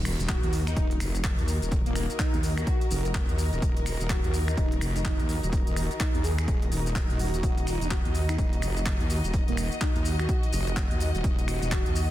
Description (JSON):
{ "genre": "bass house", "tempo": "126 BPM", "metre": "4/4", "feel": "swing 61% on 16ths", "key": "Eb minor", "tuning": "A4 = 443 Hz", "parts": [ { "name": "dark studio string section", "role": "sustained chords", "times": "0.0-12.1 s", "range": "Eb3 to Eb5", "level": "-38 LUFS", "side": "left 3 dB", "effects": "sidechain pumping" }, { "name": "wobble bass", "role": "bass", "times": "0.0-12.1 s", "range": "Eb1 to Eb2", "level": "-28 LUFS", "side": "equal", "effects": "chorus, tube saturation, sidechain pumping" }, { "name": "impact", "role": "sound effects", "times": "0.0-1.7 s", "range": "none", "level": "barely audible", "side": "none", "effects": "none" }, { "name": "granular cloud pad", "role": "texture", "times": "1.1-12.1 s", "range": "Gb4 to Bb5", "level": "-39 LUFS", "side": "right 2 dB", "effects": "built-in reverb, sidechain pumping" }, { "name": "garage drum kit", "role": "drums", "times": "0.1-12.1 s", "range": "finger snaps, handclaps, hi-hat, shaker", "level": "-35 LUFS", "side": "equal", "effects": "soft clipping on snare" }, { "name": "airy dreamy lead", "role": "melody", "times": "0.3-11.9 s", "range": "Bb3 to Ab4", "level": "-36 LUFS", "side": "right 1 dB", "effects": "chorus, tape echo" }, { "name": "electronic kick drum", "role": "drums", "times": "0.3-11.8 s", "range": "none", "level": "-28 LUFS", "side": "equal", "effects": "none" } ], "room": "digital ambience", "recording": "dense, heavily limited modern master", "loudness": "-24 LUFS", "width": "side -14 dB against mid", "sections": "0.0-12.1 A section", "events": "impact 0.0-1.7", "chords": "0.0 Ebm", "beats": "0.29 0.77 1.24 | 1.72 2.19 2.67 3.15 | 3.62 4.10 4.57 5.05 | 5.53 6.00 6.48 6.96 | 7.43 7.91 8.38 8.86 | 9.34 9.81 10.29 10.77 | 11.24 11.72" }